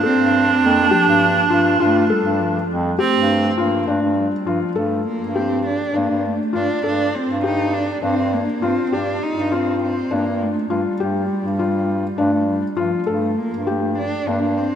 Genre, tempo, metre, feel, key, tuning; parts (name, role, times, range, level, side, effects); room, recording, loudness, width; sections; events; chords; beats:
contemporary instrumental, chamber music in an uneven meter; 202 BPM (eighths); 7/8; straight; G minor; A4 = 441 Hz
dark cello; melody; 0.0-14.8 s; F3 to Eb4; -22 LUFS; right 1 dB
bright alto saxophone; second line; 0.0-3.5 s; C4 to D4; -19 LUFS; right 4 dB
felt-muted upright piano; arpeggios; 0.0-14.7 s; D4 to A4; -22 LUFS; left 5 dB
warm bass clarinet; bass; 0.2-14.7 s; F2 to G2; -22 LUFS; right 1 dB
wet cathedral reverb, RT60 5.0 s; in a vast, echoing space; -16 LUFS; side -8 dB against mid
0.0-3.9 A section; 3.9-14.8 B section
0.0 F69; 3.9 Gsus2; 8.0 G7sus4; 12.2 Gsus2
0.04 0.33 0.62 0.92 1.22 1.51 | 1.81 2.10 2.40 2.69 2.99 3.29 3.58 | 3.88 4.17 4.47 4.77 5.06 5.36 5.66 | 5.95 6.25 6.54 6.84 7.14 7.43 7.73 | 8.03 8.32 8.62 8.92 9.21 9.51 9.81 | 10.11 10.40 10.70 10.99 11.29 11.59 11.89 | 12.18 12.48 12.78 13.08 13.37 13.67 13.97 | 14.27 14.56